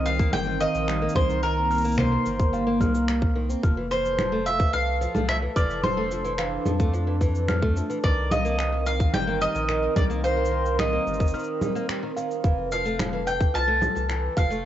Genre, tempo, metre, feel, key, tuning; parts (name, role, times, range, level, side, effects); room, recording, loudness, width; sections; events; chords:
folktronica; 109 BPM; 4/4; straight; F major; A4 = 440 Hz
bowl-back mandolin; melody; 0.0-14.7 s; Bb4 to A5; -26 LUFS; equal; cassette tape, tape echo
music box; second line; 0.0-14.6 s; F5 to F6; -36 LUFS; right 4 dB; tape echo
warbly tape-like pad; sustained chords; 0.0-14.7 s; Eb3 to Bb4; -30 LUFS; right 1 dB; chorus, built-in reverb
picked steel-string acoustic guitar; arpeggios; 0.0-14.6 s; Eb3 to C4; -32 LUFS; left 1 dB; vintage 12-bit sampler grit
warm sub bass; bass; 0.0-14.7 s; F1 to F2; -29 LUFS; equal
electronic cabasa, congas and finger snaps; drums; 0.1-14.6 s; -30 LUFS; equal; cassette tape
electronic kick drum; drums; 0.2-14.5 s; -22 LUFS; equal; cassette tape
light reverb, digital ambience; home recording on cassette, nothing above 7.8 kHz; -22 LUFS; side -12 dB against mid
0.0-14.7 A section
break 11.3-12.4
0.0 Cm7; 3.6 Fmaj7; 8.0 Cm7; 12.4 Fmaj7